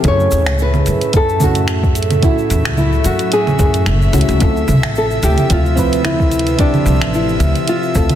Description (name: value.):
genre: sunset chillout.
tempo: 110 BPM.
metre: 4/4.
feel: swing 56% on 16ths.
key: unclear.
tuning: A4 = 440 Hz.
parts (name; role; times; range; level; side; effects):
nylon-string guitar; melody; 0.0-8.2 s; D4 to C#5; -18 LUFS; left 1 dB; digital delay.
mellow FM electric piano; accompaniment; 0.0-8.2 s; F3 to B4; -20 LUFS; moving between left 5 dB and right 8 dB; chorus, auto-pan.
airy breathy pad; sustained chords; 0.0-8.2 s; A2 to E5; -22 LUFS; equal; chorus.
upright bass; bass; 0.0-8.1 s; F#1 to F#2; -16 LUFS; equal; none.
electronic kick drum; drums; 0.0-8.1 s; none; -16 LUFS; equal; none.
smooth R&B drum kit; drums; 0.0-8.2 s; congas, finger snaps, hi-hat, shaker; -20 LUFS; right 2 dB; soft clipping on snare.
room: light reverb, small room ambience.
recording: dense, heavily limited modern master.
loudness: -12 LUFS.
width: side -11 dB against mid.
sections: 0.0-8.2 A section.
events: none.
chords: 0.0 F#m9; 4.4 Dm9.